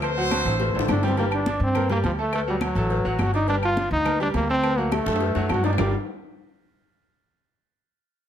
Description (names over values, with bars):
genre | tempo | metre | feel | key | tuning
latin, salsa | 208 BPM | 4/4 | straight | G minor | A4 = 438 Hz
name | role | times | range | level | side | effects
brilliant horn section | melody | 0.0-0.9 s | C4 to C5 | -27 LUFS | right 1 dB | none
bright trombone section | second line | 0.0-1.0 s | D3 to F#3 | -34 LUFS | left 2 dB | none
bright grand piano | accompaniment | 0.0-5.9 s | F#3 to D6 | -29 LUFS | right 1 dB | none
upright bass | bass | 0.0-5.9 s | G1 to G2 | -26 LUFS | equal | none
agogo bells and timbales | percussion | 0.0-5.8 s | none | -32 LUFS | right 7 dB | none
claves | percussion | 0.0-5.8 s | none | -37 LUFS | left 9 dB | none
congas | percussion | 0.0-5.9 s | none | -32 LUFS | left 1 dB | none
cowbell and bongos | percussion | 0.0-5.8 s | none | -30 LUFS | left 7 dB | none
bright trombone | melody | 0.9-5.9 s | F3 to G4 | -25 LUFS | equal | none
room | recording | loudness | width
light reverb | close, detailed microphones | -20 LUFS | side -10 dB against mid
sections
0.0-1.2 A section; 1.2-5.8 B section; 5.8-6.9 C section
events
drum fill 0.3-1.2, 4.9-5.8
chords
0.0 D7; 1.2 Gm; 2.3 D; 3.5 Gm7; 4.6 D; 5.8 Gm7